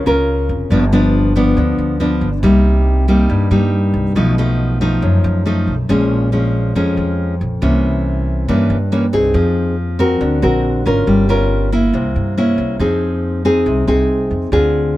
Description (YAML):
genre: bossa nova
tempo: 139 BPM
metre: 4/4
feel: straight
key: F minor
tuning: A4 = 440 Hz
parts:
  - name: nylon-string guitar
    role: accompaniment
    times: 0.0-15.0 s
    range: F2 to Bb4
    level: -14 LUFS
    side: left 1 dB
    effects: none
  - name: upright bass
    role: bass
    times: 0.0-15.0 s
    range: F1 to G2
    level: -18 LUFS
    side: right 1 dB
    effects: none
room: light reverb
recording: none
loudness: -13 LUFS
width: side -16 dB against mid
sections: 0.0-12.8 A section; 12.8-15.0 B section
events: none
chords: 0.0 Gbmaj7 (rootless); 0.7 G7; 2.4 Cm7; 4.2 B7#11; 5.9 Bbm7; 7.6 C7b9; 9.3 Fm7; 10.2 D7alt; 11.1 Gm7b5; 11.9 C7b9; 12.8 Fm7